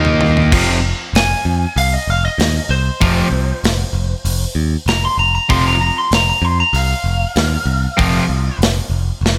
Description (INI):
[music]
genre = hard rock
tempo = 96 BPM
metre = 4/4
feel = straight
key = F minor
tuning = A4 = 440 Hz
[part]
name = cranked stack guitar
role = riff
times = 0.0-8.2 s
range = F2 to Eb4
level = -22 LUFS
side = equal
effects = overdrive, spring reverb
[part]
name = overdriven semi-hollow guitar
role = riff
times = 0.0-8.2 s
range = F2 to Eb4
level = -22 LUFS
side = equal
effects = spring reverb
[part]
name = modern bright picked electric bass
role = bass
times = 0.0-9.4 s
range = F1 to F2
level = -20 LUFS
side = equal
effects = none
[part]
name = tight metal drum kit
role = drums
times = 0.0-9.4 s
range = crash cymbal, hi-hat, kick drum, snare drum, toms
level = -22 LUFS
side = equal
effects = none
[part]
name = lightly driven lead guitar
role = melody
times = 1.2-8.6 s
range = C5 to C6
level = -21 LUFS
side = equal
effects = none
[sound]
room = light reverb, studio ambience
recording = none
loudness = -16 LUFS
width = mono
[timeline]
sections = 0.5-9.4 A section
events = drum fill 0.0-0.5, 9.2; lead electric guitar solo 0.5-9.4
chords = 0.0 Eb5; 0.5 F5